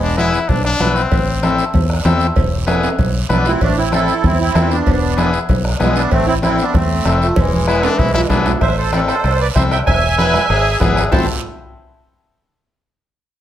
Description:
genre	latin, cumbia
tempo	192 BPM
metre	4/4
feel	straight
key	A harmonic minor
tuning	A4 = 440 Hz
part	accordion	melody	0.0-0.3, 3.3-11.3 s	E3 to A5	-18 LUFS	right 2 dB	light tremolo tuning
part	brilliant trumpet	second line	0.0-1.6, 7.7-11.3 s	C4 to C5	-20 LUFS	left 3 dB	none
part	fingered electric bass	bass	0.0-11.3 s	E1 to E2	-18 LUFS	equal	none
part	combo organ	accompaniment	0.2-11.3 s	B3 to B4	-21 LUFS	left 4 dB	spring reverb
part	bombo	percussion	0.2-11.2 s	none	-20 LUFS	left 1 dB	none
part	congas	percussion	0.2-11.2 s	none	-23 LUFS	right 1 dB	none
part	guiro	percussion	0.2-11.2 s	none	-31 LUFS	right 7 dB	none
part	cowbell and timbales	percussion	0.5-11.2 s	none	-25 LUFS	right 4 dB	none
room	light reverb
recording	none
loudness	-13 LUFS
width	side -11 dB against mid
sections	0.0-8.6 A section; 8.6-11.1 B section; 11.1-12.4 C section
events	drum fill 2.7-3.6, 7.4-8.6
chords	0.0 E7; 1.1 Am; 2.4 E; 3.6 Am; 4.9 E7; 6.1 Am; 7.4 E7; 8.6 Am; 9.9 E; 11.1 Am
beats	0.17 0.49 0.80 | 1.11 1.43 1.74 2.05 | 2.36 2.68 2.99 3.30 | 3.61 3.93 4.24 4.55 | 4.86 5.18 5.49 5.80 | 6.11 6.43 6.74 7.05 | 7.37 7.68 7.99 8.30 | 8.62 8.93 9.24 9.56 | 9.87 10.18 10.50 10.81 | 11.12

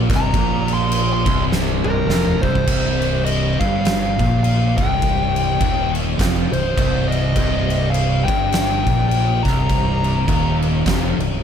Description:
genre	stoner and doom metal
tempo	103 BPM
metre	4/4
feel	swing 58% on 8ths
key	C minor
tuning	A4 = 438 Hz
part	cranked stack guitar	riff	0.0-11.4 s	C2 to Bb2	-24 LUFS	right 2 dB	overdrive
part	fuzz guitar	riff	0.0-11.4 s	C2 to Bb2	-22 LUFS	equal	distortion
part	growling fingered electric bass	bass	0.0-11.4 s	C1 to Bb1	-23 LUFS	equal	overdrive
part	oversized low-tuned drum kit	drums	0.1-11.3 s	crash cymbal, kick drum, snare drum, toms	-22 LUFS	equal	none
part	fuzz lead guitar	melody	0.2-10.6 s	Bb4 to C6	-23 LUFS	left 2 dB	distortion, ping-pong delay
room	small room ambience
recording	none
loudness	-16 LUFS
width	side -8 dB against mid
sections	0.0-2.7 A section; 2.7-11.4 B section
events	lead electric guitar solo 0.0-2.7; drum fill 1.5-2.7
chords	0.0 N.C.; 2.7 Cm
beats	| 0.34 0.93 1.51 2.10 | 2.68 3.27 3.85 4.44 | 5.03 5.61 6.20 6.78 | 7.37 7.95 8.53 9.12 | 9.70 10.28 10.86

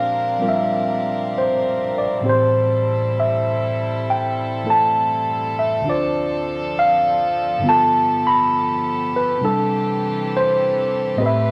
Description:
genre	jazz ballad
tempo	67 BPM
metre	4/4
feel	swing 67% on 8ths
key	C major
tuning	A4 = 440 Hz
part	tine electric piano	accompaniment	0.0-11.5 s	D2 to B5	-20 LUFS	equal	none
part	warm chamber string section	sustained chords	0.0-11.5 s	E3 to B4	-30 LUFS	equal	none
room	wet studio reverb, RT60 0.7 s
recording	none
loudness	-19 LUFS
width	mono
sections	0.0-11.5 A section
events	none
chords	0.0 Bb13; 2.2 Am7; 5.8 Dm7; 7.6 G9; 9.4 C6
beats	0.40 1.31 | 2.23 3.14 4.04 4.94 | 5.84 6.73 7.63 8.52 | 9.41 10.30 11.20

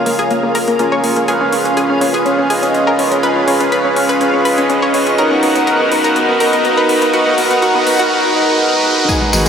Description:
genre	progressive house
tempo	123 BPM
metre	4/4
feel	straight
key	unclear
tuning	A4 = 441 Hz
part	soft supersaw	stabs	0.0-9.5 s	C#4 to G#5	-13 LUFS	right 1 dB	cassette tape, sidechain pumping, low-pass filter, analog delay
part	riser, swell and impact	sound effects	0.5-9.5 s	none	-23 LUFS	equal	none
part	backwards swelling texture	texture	0.0-9.5 s	C#5 to E#5	-30 LUFS	left 1 dB	none
part	analog pluck	arpeggios	0.1-9.5 s	G#3 to C#5	-16 LUFS	left 1 dB	chorus, vintage 12-bit sampler grit, sidechain pumping, analog delay
part	big-room dance drum kit	drums	0.1-9.5 s	crash cymbal, finger snaps, hi-hat	-26 LUFS	equal	none
part	electronic kick drum	drums	9.1-9.2 s	none	-20 LUFS	equal	none
part	tambourine	percussion	9.1-9.5 s	none	-18 LUFS	equal	none
part	saturated sub bass	bass	9.3-9.5 s	G#1	-17 LUFS	equal	sidechain pumping
room	wet cathedral reverb, RT60 5.8 s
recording	dreamy mix soaked in reverb, high-pass filter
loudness	-11 LUFS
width	side -7 dB against mid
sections	0.0-9.1 A section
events	build-up 0.0-9.1; filter sweep on supersaw synth 0.0-9.1; filter sweep 0.0-9.1; riser 0.5-9.1; swell 8.1-9.1; impact 9.1-9.5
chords	0.0 A#m7; 1.3 C#7; 5.2 Bmaj7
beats	0.31 0.79 | 1.28 1.77 2.26 2.75 | 3.23 3.72 4.21 4.70 | 5.18 5.67 6.16 6.65 | 7.13 7.62 8.11 8.60 | 9.09

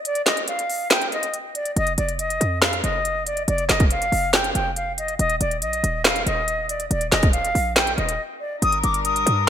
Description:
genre	hip hop, trap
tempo	140 BPM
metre	4/4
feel	half-time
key	unclear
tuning	A4 = 441 Hz
part	silver concert flute	melody	0.1-9.5 s	D5 to Eb6	-23 LUFS	left 1 dB	ping-pong delay
part	trap drum kit	drums	0.1-9.4 s	handclaps, hi-hat, kick drum, snare drum	-20 LUFS	equal	gated reverb
part	short 808-style bass	bass	1.8-9.5 s	Eb1 to G2	-26 LUFS	equal	none
part	warm chamber string section	sustained chords	8.6-9.5 s	G3 to Bb4	-26 LUFS	left 6 dB	none
room	light reverb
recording	bright 1980s-style digital production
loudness	-19 LUFS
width	side -9 dB against mid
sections	0.0-8.6 A section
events	break 0.0-1.8, 8.2-8.6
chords	0.0 N.C.; 1.8 Ebsus2/F; 5.2 Eb5; 8.6 Gm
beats	| 0.05 0.48 0.91 1.34 | 1.76 2.19 2.62 3.05 | 3.48 3.91 4.34 4.76 | 5.19 5.62 6.05 6.48 | 6.91 7.34 7.76 8.19 | 8.62 9.05 9.48

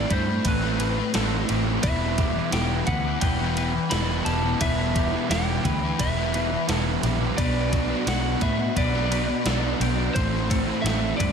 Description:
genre	rock, shoegaze and dream pop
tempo	87 BPM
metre	4/4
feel	straight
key	E minor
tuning	A4 = 439 Hz
part	lightly driven lead guitar	melody	0.0-11.3 s	B4 to B5	-30 LUFS	right 1 dB	digital delay
part	twangy electric guitar	arpeggios	0.0-11.3 s	F#4 to B5	-34 LUFS	left 7 dB	lush chorus, digital delay
part	raw garage guitar	riff	0.0-11.3 s	A2 to E4	-28 LUFS	right 13 dB	overdrive, reverse reverb
part	thick fuzz guitar	riff	0.0-11.3 s	E2 to B3	-28 LUFS	left 12 dB	distortion, analog chorus
part	vintage muted fingered electric bass	bass	0.0-11.3 s	E1 to A2	-27 LUFS	equal	none
part	gated 80s digital drum machine	drums	0.1-11.3 s	kick drum, ride cymbal, snare drum	-28 LUFS	equal	gated reverb, gated reverb snare
room	light reverb, digital ambience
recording	none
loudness	-21 LUFS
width	side -6 dB against mid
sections	0.0-11.3 A section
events	none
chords	0.0 Amadd9; 1.8 Em; 7.4 Bm; 10.2 Am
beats	0.46 1.15 | 1.84 2.54 3.23 3.92 | 4.61 5.30 5.99 6.69 | 7.38 8.07 8.76 9.46 | 10.15 10.85

